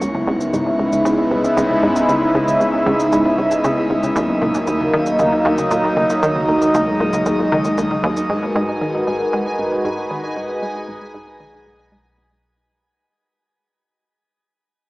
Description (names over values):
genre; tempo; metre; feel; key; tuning
ambient, sequencer-driven space music; 116 BPM; 4/4; straight; G# minor from 8.3 s; A4 = 440 Hz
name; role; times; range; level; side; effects
sweeping resonant pad; sustained chords; 0.0-12.4 s; C#3 to B4; -16 LUFS; equal; chorus, phaser
resonant blip pluck; riff; 0.0-12.3 s; C#2 to G#3; -22 LUFS; equal; chorus, analog delay
warm sub bass; bass; 0.0-12.4 s; G#1 to D#2; -40 LUFS; equal; none
electronic cabasa and toms; percussion; 0.0-8.3 s; none; -33 LUFS; equal; analog delay
pulsing gated texture; texture; 8.3-12.4 s; G#5; -31 LUFS; right 1 dB; chorus, built-in reverb
room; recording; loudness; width
wet shimmer reverb, RT60 7.8 s; small speaker sound, faint mains hum; -15 LUFS; side -20 dB against mid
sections
0.0-8.3 A section; 8.3-12.4 B section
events
fade-out 8.3-12.4; filter sweep on synth arpeggio sound 8.3-12.4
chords
0.0 C#m7; 4.2 D#m; 8.3 G#m7